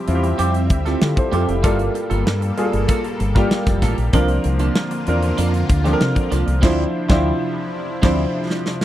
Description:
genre	polished 1980s jazz-funk pop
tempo	96 BPM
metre	4/4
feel	straight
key	D minor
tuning	A4 = 443 Hz
part	warm concert grand piano	accompaniment	0.0-8.8 s	F3 to C5	-21 LUFS	equal	analog chorus
part	lush unison pad	sustained chords	0.0-8.8 s	C3 to E5	-28 LUFS	left 1 dB	chorus, phaser
part	fingered electric bass with an envelope filter	bass	0.1-8.2 s	F1 to D3	-20 LUFS	equal	none
part	modern studio drum kit	drums	0.1-8.8 s	crash cymbal, hi-hat, kick drum, snare drum	-19 LUFS	equal	none
part	clean electric guitar	riff	0.2-8.2 s	F3 to Bb4	-26 LUFS	right 5 dB	wide subtle chorus
room	small room ambience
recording	dry, close 1970s-style studio recording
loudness	-16 LUFS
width	side -13 dB against mid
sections	0.0-8.8 A section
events	band accent 6.6-8.8; drum fill 8.5-8.8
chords	0.0 Dm11; 1.6 Gm9; 4.1 C9sus4; 6.6 Dm9

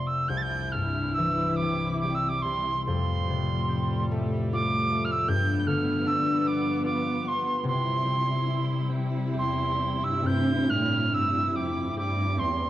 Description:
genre	celtic folk, Celtic slow air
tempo	65-79 BPM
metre	3/4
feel	rubato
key	unclear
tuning	A4 = 441 Hz
part	wooden whistle	melody	0.0-12.7 s	C6 to A6	-28 LUFS	right 2 dB	none
part	concert harp	accompaniment	0.0-12.7 s	C2 to G5	-28 LUFS	left 2 dB	none
part	rich symphonic string section	sustained chords	0.3-12.7 s	G2 to E4	-33 LUFS	right 1 dB	none
part	warm cello	second line	9.4-12.7 s	E2 to C3	-29 LUFS	right 1 dB	none
room	moderate concert hall reverb, RT60 2.1 s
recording	worn, warbling old tape, cassette tape, warbly pitch drift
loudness	-24 LUFS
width	side -13 dB against mid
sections	0.3-12.7 A section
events	harp fill 0.0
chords	0.3 C; 2.9 Fadd9; 5.3 G7; 7.7 C

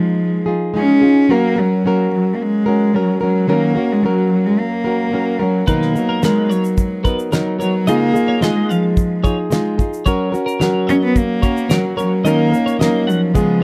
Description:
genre	acoustic pop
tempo	109 BPM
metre	4/4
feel	straight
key	F# major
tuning	A4 = 443 Hz
part	dark cello	melody	0.0-13.6 s	E#3 to C#4	-19 LUFS	equal	tape echo
part	flamenco guitar	accompaniment	0.0-13.6 s	B2 to A#4	-20 LUFS	equal	none
part	twelve-string electric guitar	arpeggios	5.7-13.2 s	A#4 to F#5	-27 LUFS	equal	subtle chorus
part	cloth-damped thuddy drum kit	drums	5.7-13.5 s	kick drum, shaker, snare drum	-21 LUFS	equal	none
room	light reverb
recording	close, detailed microphones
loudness	-16 LUFS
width	mono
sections	0.0-13.6 A section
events	none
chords	0.0 C#add9; 1.3 F#; 3.5 D#m7; 5.7 Bmaj7; 7.9 C#add9; 10.1 F#; 12.3 D#m7

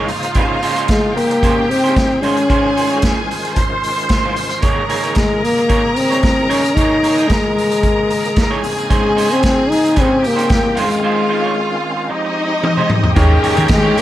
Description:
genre	disco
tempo	112 BPM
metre	4/4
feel	straight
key	unclear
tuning	A4 = 442 Hz
part	dark trombone	melody	0.0-14.0 s	Ab3 to Eb4	-16 LUFS	left 2 dB	none
part	warm studio violin section	second line	0.0-14.0 s	Eb4 to C6	-20 LUFS	left 1 dB	none
part	electric guitar through a small old amp	accompaniment	0.0-14.0 s	Ab3 to Eb5	-22 LUFS	right 4 dB	none
part	bright tonewheel organ	sustained chords	0.0-14.0 s	Db3 to Bb5	-24 LUFS	right 1 dB	chorus vibrato, fast rotary speaker
part	vintage drum kit	drums	0.1-14.0 s	hi-hat, kick drum, snare drum, toms	-18 LUFS	equal	none
part	warm grand piano	accompaniment	13.2-14.0 s	Eb3 to Ab4	-19 LUFS	left 1 dB	none
part	hollow-body short-scale fingered electric bass	bass	13.2-13.9 s	Eb2 to Eb3	-14 LUFS	equal	none
room	light reverb, small room ambience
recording	none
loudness	-13 LUFS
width	side -13 dB against mid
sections	0.0-13.2 A section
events	break 11.0-13.2; drum fill 12.6-13.2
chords	0.1 Bbm11; 2.2 Dbmaj9; 4.6 Eb7sus4; 8.6 Bbm11; 10.8 Dbmaj9; 12.1 Fm9; 13.2 Eb7sus4

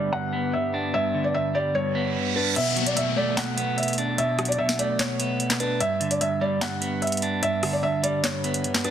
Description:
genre	hip hop, trap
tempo	148 BPM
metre	4/4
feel	half-time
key	B minor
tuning	A4 = 439 Hz
part	felt-muted upright piano	melody	0.0-8.9 s	B4 to F#5	-26 LUFS	equal	low-pass filter
part	clean electric guitar	accompaniment	0.0-8.9 s	G2 to D4	-26 LUFS	right 2 dB	low-pass filter
part	warbly tape-like pad	sustained chords	0.0-2.5 s	D3 to B4	-34 LUFS	left 5 dB	chorus, built-in reverb, low-pass filter
part	reverse cymbal and downlifter	sound effects	1.9-5.8 s	none	-30 LUFS	equal	none
part	trap drum kit	drums	2.6-8.9 s	crash cymbal, handclaps, hi-hat, rim click, snare drum	-28 LUFS	equal	none
room	light reverb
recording	dense, heavily limited modern master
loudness	-22 LUFS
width	side -9 dB against mid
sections	0.0-2.6 A section; 2.6-8.9 B section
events	reverse cymbal 1.9-2.6; kick muted 2.6-8.9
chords	0.0 G; 2.6 Bm7; 5.8 G

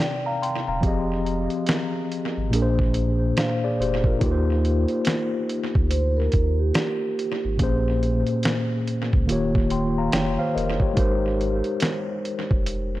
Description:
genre	lo-fi hip hop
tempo	71 BPM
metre	4/4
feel	swing 63% on 16ths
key	unclear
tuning	A4 = 435 Hz
part	mellow tine electric piano	accompaniment	0.0-13.0 s	Bb2 to C6	-24 LUFS	left 1 dB	medium stereo tremolo, tape echo
part	dusty soul sampler-style drum kit	drums	0.4-12.9 s	hi-hat, kick drum, snare drum	-25 LUFS	equal	overdrive, tape echo
part	warm sub bass	bass	0.7-13.0 s	Eb1 to Eb2	-25 LUFS	equal	none
part	vibraphone with soft mallets	second line	5.9-7.6 s	G4 to C5	-28 LUFS	right 4 dB	tape echo
room	light reverb, digital ambience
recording	echo-heavy mix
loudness	-20 LUFS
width	side -16 dB against mid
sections	0.0-13.0 A section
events	none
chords	0.0 Cm9; 0.8 Fm7; 2.5 Bb9; 4.2 Eb6; 7.6 Bbm7; 9.3 Eb9; 11.0 Abmaj7

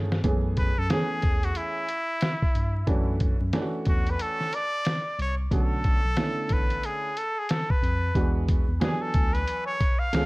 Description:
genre	hip hop, jazz-hop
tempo	91 BPM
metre	4/4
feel	swing 62% on 16ths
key	F# minor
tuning	A4 = 440 Hz
part	warm upright piano	accompaniment	0.0-10.3 s	D3 to G#5	-30 LUFS	right 2 dB	none
part	mellow tine electric piano	bass	0.0-10.3 s	A1 to G2	-28 LUFS	equal	none
part	lo-fi sampler-style drum kit	drums	0.1-10.3 s	hi-hat, kick drum, snare drum	-25 LUFS	equal	none
part	trumpet with straight mute	melody	0.6-10.3 s	E4 to E#5	-29 LUFS	equal	analog delay
room	light reverb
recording	dark, warm production, vinyl crackle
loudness	-23 LUFS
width	side -22 dB against mid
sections	0.2-10.3 A section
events	drum fill 0.0; muted trumpet solo 0.2-10.3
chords	0.2 F#m11; 2.9 Dmaj9; 5.5 Bm9; 8.2 E9

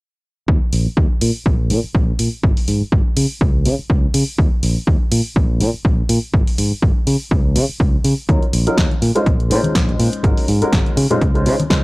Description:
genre	filtered disco house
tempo	123 BPM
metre	4/4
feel	swing 56% on 16ths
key	Eb dorian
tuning	A4 = 436 Hz
part	fingered electric bass	bass	0.5-11.8 s	Ab1 to Db3	-17 LUFS	equal	tube saturation, sidechain pumping, low-pass filter
part	electronic kick drum	drums	0.5-11.8 s	none	-16 LUFS	equal	overdrive
part	punchy analog drum machine	drums	0.7-11.8 s	hi-hat, snare drum	-23 LUFS	equal	sidechain pumping on hats
part	bright grand piano	accompaniment	8.3-11.8 s	Gb3 to C5	-20 LUFS	equal	phaser, vintage 12-bit sampler grit, sidechain pumping, low-pass filter
part	congas and tambourine	percussion	8.3-11.8 s	none	-25 LUFS	left 2 dB	sidechain pumping on perc, low-pass filter on perc
room	digital ambience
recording	dry, gritty hardware recording, cassette tape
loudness	-14 LUFS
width	side -23 dB against mid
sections	0.5-11.8 A section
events	filter sweep 0.5-11.8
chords	0.5 Eb5; 1.2 N.C.; 4.4 Eb5; 5.1 N.C.; 8.3 Ebm9; 9.0 Bbm11; 10.2 Ab9sus4; 11.0 Dbmaj9

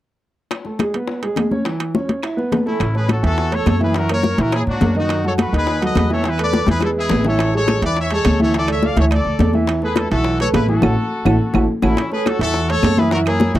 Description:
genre	latin, salsa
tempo	209 BPM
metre	4/4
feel	straight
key	A major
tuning	A4 = 438 Hz
part	bongos	percussion	0.5-13.5 s	none	-26 LUFS	left 5 dB	none
part	claves	percussion	0.5-13.4 s	none	-33 LUFS	right 14 dB	none
part	congas	percussion	0.5-13.6 s	none	-20 LUFS	left 2 dB	none
part	timbales	percussion	0.5-13.6 s	none	-26 LUFS	right 5 dB	none
part	warm concert grand piano	accompaniment	0.7-13.6 s	D#3 to E5	-20 LUFS	right 2 dB	none
part	brilliant trumpet section	melody	2.7-13.6 s	C#4 to F5	-22 LUFS	left 2 dB	none
part	upright bass	bass	2.8-13.6 s	A1 to A#2	-20 LUFS	equal	none
room	light reverb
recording	dry, close 1970s-style studio recording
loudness	-15 LUFS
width	side -14 dB against mid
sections	0.5-2.8 A section; 2.8-12.0 B section; 12.0-13.6 B section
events	drum fill 6.5-7.4, 10.8-12.0; band accent 10.8-12.0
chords	0.5 G#m; 1.1 G#madd11; 1.7 C#m/E; 2.2 E5; 2.8 A6; 4.0 F#7; 5.1 B7; 6.2 E7sus4; 6.8 E; 7.4 Amaj7; 8.5 Dsus2; 9.7 Esus4; 10.8 A5; 12.0 A6

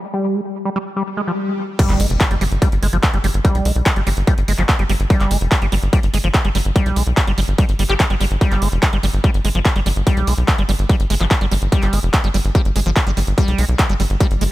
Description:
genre	psychedelic trance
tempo	145 BPM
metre	4/4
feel	straight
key	unclear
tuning	A4 = 440 Hz
part	liquid acid bass	riff	0.1-14.4 s	F3 to G4	-23 LUFS	right 1 dB	chorus, auto-pan, sidechain pumping, ping-pong delay
part	swell and impact	sound effects	1.1-3.4, 14.3-14.5 s	none	-25 LUFS	left 1 dB	none
part	big-room dance drum kit	drums	1.8-14.5 s	crash cymbal, handclaps, hi-hat	-23 LUFS	equal	none
part	electronic kick drum	drums	1.8-14.3 s	none	-16 LUFS	equal	distortion, overdrive
part	tight sequencer bass	bass	1.9-14.5 s	F1 to B1	-17 LUFS	equal	tube saturation
room	little or no reverb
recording	none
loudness	-15 LUFS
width	side -16 dB against mid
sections	0.0-1.8 A section; 1.8-14.5 B section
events	filter sweep on acid bass 0.0-1.8; swell 1.1-1.8, 14.3; drop 1.8-14.5; impact 1.8-3.4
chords	0.0 Fmadd9 (rootless); 1.8 N.C.

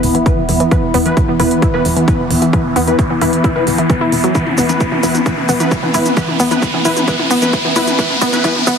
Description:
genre	driving peak-time techno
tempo	132 BPM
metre	4/4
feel	straight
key	unclear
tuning	A4 = 440 Hz
part	tight sequencer bass	bass	0.0-8.8 s	D1 to E2	-21 LUFS	equal	sidechain pumping
part	swarming drone	drone	0.0-8.8 s	E3 to B3	-21 LUFS	equal	built-in reverb, sidechain pumping
part	techno drum kit	drums	0.0-8.8 s	hi-hat, shaker, toms	-21 LUFS	equal	sidechain pumping on perc, sidechain pumping on hats, sidechain pumping on toms
part	riser	sound effects	0.0-8.8 s	none	-22 LUFS	equal	none
part	warbly tape-like pad	texture	0.0-8.8 s	B3 to B5	-21 LUFS	equal	chorus, built-in reverb, sidechain pumping
part	wide unison pluck	riff	0.1-8.7 s	E3 to E4	-18 LUFS	equal	overdrive, sidechain pumping, digital delay
part	rave stab	stabs	0.3-8.5 s	E3 to B4	-19 LUFS	left 1 dB	chorus, built-in reverb, sidechain pumping, digital delay
part	electronic kick drum	drums	0.3-8.8 s	none	-17 LUFS	equal	none
room	moderate huge ambient reverb, RT60 7.9 s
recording	heavily compressed radio sound, high-pass filter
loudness	-11 LUFS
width	side -6 dB against mid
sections	0.0-8.8 A section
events	build-up 0.0-8.8; riser 0.0-8.8; filter sweep on synth arpeggio sound 0.0-8.8; filter sweep on synth stab 0.0-8.8; filter sweep 0.0-8.8; drum fill 4.4-8.8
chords	0.0 E5

